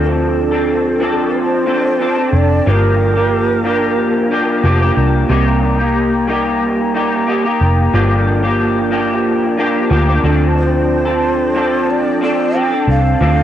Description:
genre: indie pop, bedroom pop.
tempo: 91 BPM.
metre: 4/4.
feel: straight.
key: G minor.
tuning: A4 = 440 Hz.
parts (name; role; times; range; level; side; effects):
breathy hollow shakuhachi; melody; 0.0-4.7, 10.6-13.4 s; A4 to G5; -18 LUFS; right 2 dB; wide subtle chorus, cassette tape, analog delay.
electric guitar through a small old amp; accompaniment; 0.0-13.4 s; G2 to A4; -14 LUFS; equal; ensemble chorus, vibrato effect.
vintage muted picked electric bass; bass; 0.0-13.4 s; F1 to D2; -16 LUFS; equal; none.
room: light reverb.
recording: home recording on cassette, nothing above 10.4 kHz.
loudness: -12 LUFS.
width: side -11 dB against mid.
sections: 0.0-13.4 A section.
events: none.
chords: 0.0 Dm7; 2.7 Gm7; 5.3 Cm7; 7.9 Gm7; 10.2 Dm7.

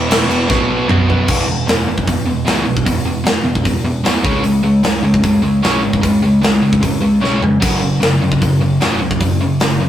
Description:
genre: punk rock.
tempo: 152 BPM.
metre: 4/4.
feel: straight.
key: E major.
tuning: A4 = 440 Hz.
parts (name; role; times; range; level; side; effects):
overdriven electric guitar; riff; 0.0-9.9 s; E2 to C#4; -14 LUFS; equal; none.
overdriven picked electric bass; bass; 0.0-9.9 s; E1 to F2; -24 LUFS; equal; none.
big rock drum kit; drums; 0.1-9.7 s; crash cymbal, hi-hat, kick drum, snare drum, toms; -16 LUFS; equal; none.
room: light reverb.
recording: rough rehearsal-room recording, warm saturation.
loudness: -12 LUFS.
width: side -11 dB against mid.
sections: 0.0-1.3 A section; 1.3-9.9 B section.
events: drum fill 0.5-1.3, 7.2-7.6.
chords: 0.5 B5; 1.3 E5; 4.3 C#5; 7.6 F#5.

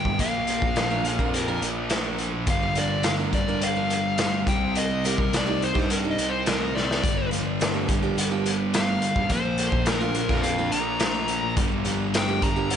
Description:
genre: quiet-loud alternative rock.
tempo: 106 BPM.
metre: 4/4.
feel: straight.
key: G minor.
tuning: A4 = 440 Hz.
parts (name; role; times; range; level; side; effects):
dark smooth lead guitar; melody; 0.0-12.8 s; Bb4 to Bb5; -28 LUFS; left 3 dB; overdrive, tape echo.
thick fuzz guitar; riff; 0.0-12.8 s; G2 to C4; -28 LUFS; right 1 dB; distortion, slapback echo.
fuzz picked electric bass; bass; 0.0-12.8 s; G1 to G2; -30 LUFS; equal; overdrive.
raw garage drum kit; drums; 0.1-12.8 s; hi-hat, kick drum, snare drum; -26 LUFS; equal; none.
picked steel-string acoustic guitar; arpeggios; 0.3-12.7 s; D3 to Bb4; -33 LUFS; right 6 dB; slapback echo.
room: moderate concert hall reverb, RT60 2.3 s.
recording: big arena sound, nothing above 10.3 kHz.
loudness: -22 LUFS.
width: side -8 dB against mid.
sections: 0.0-12.8 A section.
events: lead electric guitar solo 0.0-12.8; drum fill 6.8.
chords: 0.2 Bb; 2.5 Gm7; 4.5 Cm7; 7.0 Gm7; 9.3 Bb; 11.6 Gm7.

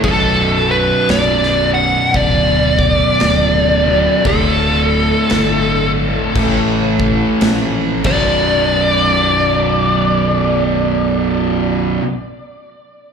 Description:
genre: stoner and doom metal.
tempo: 57 BPM.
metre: 4/4.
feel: swing 61% on 8ths.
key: B minor.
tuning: A4 = 440 Hz.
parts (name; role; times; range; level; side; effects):
fuzz lead guitar; melody; 0.0-12.0 s; A4 to F#5; -16 LUFS; left 1 dB; wah, distortion, slapback echo, ping-pong delay.
fuzz guitar; riff; 0.0-12.0 s; B1 to A3; -16 LUFS; right 1 dB; distortion, slapback echo.
growling picked electric bass; bass; 0.0-12.0 s; B0 to A#1; -20 LUFS; equal; overdrive.
big rock drum kit; drums; 0.0-8.2 s; crash cymbal, kick drum, snare drum; -22 LUFS; equal; none.
room: small room ambience.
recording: live gig heard through the venue's PA, club reverb.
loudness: -12 LUFS.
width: side -6 dB against mid.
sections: 0.0-8.5 A section; 8.5-12.7 B section.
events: drum fill 7.9-8.5.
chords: 0.0 Bm; 4.3 D5; 6.4 A5; 7.9 Bm.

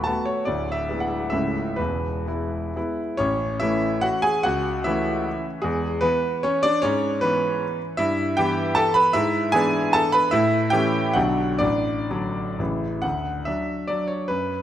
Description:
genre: classical, romantic triple-time dance for piano with dotted rhythms.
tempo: 118-164 BPM.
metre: 3/4.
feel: rubato.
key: A major, D major from 8.0 s.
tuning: A4 = 440 Hz.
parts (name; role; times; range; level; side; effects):
clear concert grand piano; solo; 0.0-14.6 s; C#1 to B5; -20 LUFS; equal; none.
room: moderate concert hall reverb, RT60 1.9 s.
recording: none.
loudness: -20 LUFS.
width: side -11 dB against mid.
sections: 0.0-3.2 A section; 3.2-13.0 B section; 13.0-14.6 C section.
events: none.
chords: 0.5 E7/D; 1.3 A/C#; 1.8 E; 3.2 A; 4.5 A/C#; 5.6 E; 6.8 E/G#; 8.0 Em/G; 9.2 E7/G#; 10.3 A; 11.2 Bm; 11.6 D/A; 12.6 A; 13.0 D.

